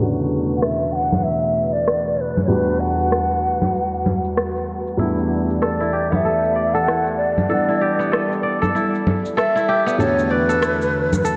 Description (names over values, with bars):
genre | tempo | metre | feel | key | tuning
organic downtempo | 96 BPM | 4/4 | swing 59% on 16ths | E dorian | A4 = 440 Hz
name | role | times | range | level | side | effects
felt-muted upright piano | accompaniment | 0.0-11.4 s | E2 to F#5 | -26 LUFS | equal | delay
airy breathy pad | sustained chords | 0.0-11.4 s | E2 to D5 | -29 LUFS | equal | chorus
electronic cabasa, rim click and congas | drums | 0.0-11.4 s | none | -25 LUFS | equal | overdrive, low-pass filter on perc, low-pass filter on snare
breathy mellow ney | melody | 0.6-11.4 s | A4 to G5 | -24 LUFS | equal | slapback echo, delay
kora | arpeggios | 5.0-11.4 s | B3 to D5 | -25 LUFS | equal | slapback echo, delay
room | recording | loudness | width
wet lush hall reverb, RT60 2.2 s | big arena sound, low-pass filter | -19 LUFS | mono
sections
0.0-11.4 A section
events
filter sweep on drum 0.0-11.4; filter sweep on analog synth pad 0.0-11.4; filter sweep 0.0-11.4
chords
0.0 Bm7/E; 2.5 Gmaj7/E; 5.0 A7sus4/E; 7.5 Em7